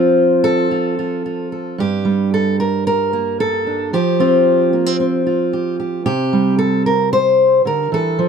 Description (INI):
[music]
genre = folk, solo fingerstyle acoustic guitar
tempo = 112 BPM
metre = 4/4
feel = straight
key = unclear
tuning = A4 = 441 Hz
[part]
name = fingerpicked steel-string acoustic guitar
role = solo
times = 0.0-8.3 s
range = G2 to C5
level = -14 LUFS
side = equal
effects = none
[sound]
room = moderate studio reverb, RT60 0.7 s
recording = close, detailed microphones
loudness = -14 LUFS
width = side -6 dB against mid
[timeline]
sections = 0.0-8.3 A section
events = none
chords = 0.0 F; 1.8 Gm; 3.9 Fsus2; 6.1 C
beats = 0.17 0.71 1.25 | 1.79 2.33 2.86 3.40 | 3.93 4.46 5.00 5.53 | 6.06 6.59 7.12 7.66 | 8.19